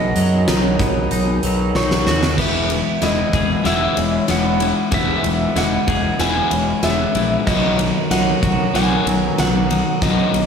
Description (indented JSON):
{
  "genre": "post-rock",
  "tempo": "94 BPM",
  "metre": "4/4",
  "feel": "straight",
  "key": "E lydian",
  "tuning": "A4 = 440 Hz",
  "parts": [
    { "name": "clean lap steel guitar", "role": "melody", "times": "0.0-10.5 s", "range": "B4 to G#5", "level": "-23 LUFS", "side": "right 3 dB", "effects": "slapback echo, analog delay" },
    { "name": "hand-pumped harmonium", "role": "sustained chords", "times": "0.0-10.5 s", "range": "B2 to A#5", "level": "-28 LUFS", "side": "right 2 dB", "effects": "none" },
    { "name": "twangy electric guitar", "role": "arpeggios", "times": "0.0-10.5 s", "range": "E2 to G#4", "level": "-27 LUFS", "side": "left 1 dB", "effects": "wide subtle chorus, analog delay" },
    { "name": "vibraphone with soft mallets", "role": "arpeggios", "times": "0.0-10.5 s", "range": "B4 to E5", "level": "-30 LUFS", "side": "right 3 dB", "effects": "slapback echo, analog delay" },
    { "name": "fuzz fingered electric bass", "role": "bass", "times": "0.0-10.5 s", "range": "E1 to F#2", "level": "-21 LUFS", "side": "equal", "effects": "overdrive" },
    { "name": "huge arena drum kit", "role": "drums", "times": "0.2-10.5 s", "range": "crash cymbal, hi-hat, kick drum, ride cymbal, snare drum", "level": "-21 LUFS", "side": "right 1 dB", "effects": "none" },
    { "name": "fuzz guitar", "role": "riff", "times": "2.4-10.5 s", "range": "B2 to B3", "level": "-20 LUFS", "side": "left 7 dB", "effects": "distortion" }
  ],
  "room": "moderate lush hall reverb, RT60 2.3 s",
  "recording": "big arena sound",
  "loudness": "-15 LUFS",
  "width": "side -6 dB against mid",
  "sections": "0.0-2.4 A section; 2.4-10.5 B section",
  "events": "drum fill 1.7-2.4, 2.4-10.5; build-up 2.4-10.5",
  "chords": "0.0 B; 2.4 E; 7.5 Bmaj7",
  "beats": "0.48 1.11 1.75 | 2.38 3.02 3.66 4.29 | 4.93 5.57 6.20 6.84 | 7.47 8.11 8.75 9.38 | 10.02"
}